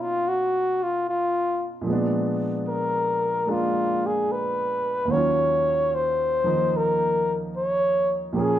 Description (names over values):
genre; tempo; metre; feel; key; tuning
jazz ballad; 74 BPM; 4/4; swing 68% on 8ths; unclear; A4 = 441 Hz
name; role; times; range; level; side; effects
breathy flugelhorn; melody; 0.0-8.6 s; E#4 to Db5; -22 LUFS; left 1 dB; none
warm baby grand piano; accompaniment; 0.0-8.6 s; Eb2 to E#5; -27 LUFS; right 2 dB; none
room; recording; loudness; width
moderate large studio reverb, RT60 1.1 s; band playing live in one room; -21 LUFS; side -11 dB against mid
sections
0.0-8.6 A section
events
none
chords
0.0 Bmaj9#11; 1.9 Bb7b9; 5.1 Ebm9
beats
0.24 1.05 | 1.85 2.66 3.47 4.28 | 5.10 5.92 6.73 7.54 | 8.35